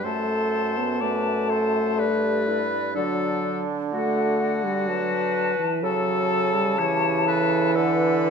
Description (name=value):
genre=classical, slow romantic movement for wind quintet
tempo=62 BPM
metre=3/4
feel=rubato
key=unclear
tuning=A4 = 439 Hz
part: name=hollow concert flute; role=melody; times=0.0-8.3 s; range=D5 to A5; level=-28 LUFS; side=left 8 dB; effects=none
part: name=clear oboe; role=second line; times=0.0-8.3 s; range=F#4 to D5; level=-30 LUFS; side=left 3 dB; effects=none
part: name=dark French horn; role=accompaniment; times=0.0-8.3 s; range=E3 to B3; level=-25 LUFS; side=equal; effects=none
part: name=mellow clarinet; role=accompaniment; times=0.0-8.3 s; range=D4 to B4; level=-28 LUFS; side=right 5 dB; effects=none
part: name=warm bassoon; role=bass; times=0.0-8.3 s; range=F#2 to D3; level=-29 LUFS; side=right 4 dB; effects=none
room=moderate recital hall reverb, RT60 1.5 s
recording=none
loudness=-21 LUFS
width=side -6 dB against mid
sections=0.0-8.3 A section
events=none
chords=0.0 D7/F#; 2.0 G; 3.0 D; 5.8 A/C#; 7.8 D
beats=| 0.05 1.02 1.99 | 2.96 3.93 4.88 | 5.83 6.78 7.75